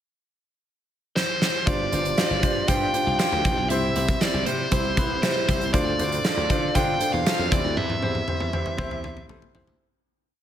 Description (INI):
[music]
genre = 1980s-style pop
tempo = 118 BPM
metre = 4/4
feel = straight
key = C major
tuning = A4 = 441 Hz
[part]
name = bluesy overdriven lead guitar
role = melody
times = 1.2-9.3 s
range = C5 to G5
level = -26 LUFS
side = equal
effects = distortion, digital delay
[part]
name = huge arena drum kit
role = drums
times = 1.2-9.8 s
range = hi-hat, kick drum, snare drum, toms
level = -25 LUFS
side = equal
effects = gated reverb
[part]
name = warm baby grand piano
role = accompaniment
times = 1.7-9.8 s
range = C4 to C5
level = -27 LUFS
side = equal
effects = none
[part]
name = glassy slap bass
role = bass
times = 1.7-9.8 s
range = G1 to E3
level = -29 LUFS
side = equal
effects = none
[sound]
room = light reverb, small room ambience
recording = none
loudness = -21 LUFS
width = side -10 dB against mid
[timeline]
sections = 0.0-1.7 pickup bar; 1.7-9.8 verse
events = drum fill 1.2-1.7, 7.8-9.8; fade-out 7.8-9.8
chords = 0.0 N.C.; 1.7 G7sus4; 3.7 C; 5.7 Dm7; 7.5 C